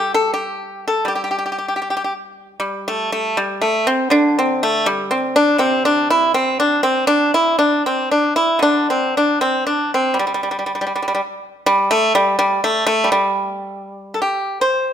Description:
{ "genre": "chinese traditional, Chinese solo plucked strings", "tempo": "76-85 BPM", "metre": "2/4", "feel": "rubato", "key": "G zhi mode", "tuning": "A4 = 440 Hz", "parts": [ { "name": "pipa", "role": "solo", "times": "0.0-14.9 s", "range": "C3 to C5", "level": "-15 LUFS", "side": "equal", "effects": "none" } ], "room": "moderate recital hall reverb, RT60 1.5 s", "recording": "none", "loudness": "-15 LUFS", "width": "side -9 dB against mid", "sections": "0.0-2.6 A section; 2.6-14.6 B section", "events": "none", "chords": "none", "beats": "0.34 | 1.07 1.84 | 2.62 3.39 | 4.14 4.88 | 5.61 6.34 | 7.08 7.83 | 8.61 9.40 | 10.17 10.91 | 11.64 12.37 | 13.09 13.84 | 14.61" }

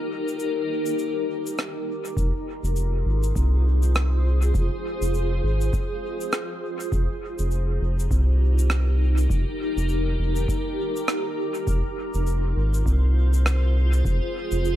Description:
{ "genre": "ambient dub", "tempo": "101 BPM", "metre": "4/4", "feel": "swing 58% on 16ths", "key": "F minor", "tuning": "A4 = 439 Hz", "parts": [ { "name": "granular cloud pad", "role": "sustained chords", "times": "0.0-14.8 s", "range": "Eb4 to C5", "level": "-28 LUFS", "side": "equal", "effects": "built-in reverb" }, { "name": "shaker and rim click", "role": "drums", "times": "0.3-14.8 s", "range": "none", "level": "-31 LUFS", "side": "right 1 dB", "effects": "dub echo" }, { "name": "round analog bass", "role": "bass", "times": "2.2-14.8 s", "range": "F1 to C2", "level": "-20 LUFS", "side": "equal", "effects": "none" }, { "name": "electronic kick drum", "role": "drums", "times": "2.2-14.2 s", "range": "none", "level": "-27 LUFS", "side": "equal", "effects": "none" } ], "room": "studio ambience", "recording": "echo-heavy mix", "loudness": "-21 LUFS", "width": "side -13 dB against mid", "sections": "0.0-2.2 A section; 2.2-14.8 B section", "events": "break 0.0-2.2", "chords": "0.0 Eb; 2.2 Fm; 6.9 Eb/F; 11.7 Fm", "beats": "0.39 0.98 1.58 | 2.17 2.76 3.36 3.95 | 4.55 5.14 5.74 6.33 | 6.92 7.52 8.11 8.71 | 9.30 9.89 10.49 11.08 | 11.68 12.27 12.86 13.46 | 14.05 14.64" }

